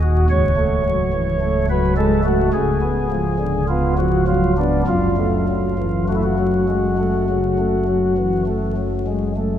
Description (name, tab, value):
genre	classical, chorale-style piece for pipe organ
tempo	50-54 BPM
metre	4/4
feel	rubato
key	F# minor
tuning	A4 = 439 Hz
part	pipe organ, flutes	solo	0.0-9.6 s	C#1 to C#5	-16 LUFS	equal	none
room	wet church reverb, RT60 2.9 s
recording	minimal, uncompressed stereo recording, vinyl crackle, faint mains hum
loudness	-16 LUFS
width	side -10 dB against mid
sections	0.0-9.6 A section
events	none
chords	0.3 F#m/C#; 2.5 C#7; 4.9 F#m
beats	| 0.30 1.41 2.53 3.68 | 4.87 6.07 7.27 8.46